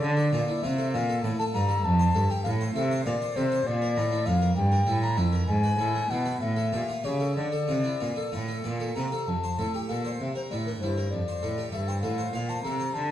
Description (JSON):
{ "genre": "classical, baroque-style sonata movement with continuo", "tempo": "65 BPM (dotted quarters)", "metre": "6/8", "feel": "straight", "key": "D minor, F major from 9.3 s", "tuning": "A4 = 445 Hz", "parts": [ { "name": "mellow baroque flute", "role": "melody", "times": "0.0-13.1 s", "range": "Bb4 to Bb5", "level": "-30 LUFS", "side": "left 3 dB", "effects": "none" }, { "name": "harpsichord", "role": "accompaniment", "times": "0.0-13.1 s", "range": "F2 to F5", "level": "-30 LUFS", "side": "equal", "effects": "none" }, { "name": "warm cello", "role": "bass", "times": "0.0-13.1 s", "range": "F2 to D3", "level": "-28 LUFS", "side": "right 2 dB", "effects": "none" } ], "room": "moderate recital hall reverb, RT60 1.6 s", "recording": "dark, warm production", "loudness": "-24 LUFS", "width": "side -12 dB against mid", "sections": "0.0-9.3 A section; 9.3-13.1 A section", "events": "none", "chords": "0.0 Dm; 1.8 F; 3.7 Bb; 4.6 Edim/G; 5.5 E7/G#; 6.4 A7; 7.4 Dm; 9.3 F; 10.2 C7; 11.1 F", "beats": "| 0.01 0.94 | 1.84 2.75 | 3.67 4.57 | 5.49 6.42 | 7.36 8.32 | 9.27 10.20 | 11.12 12.04 | 12.96" }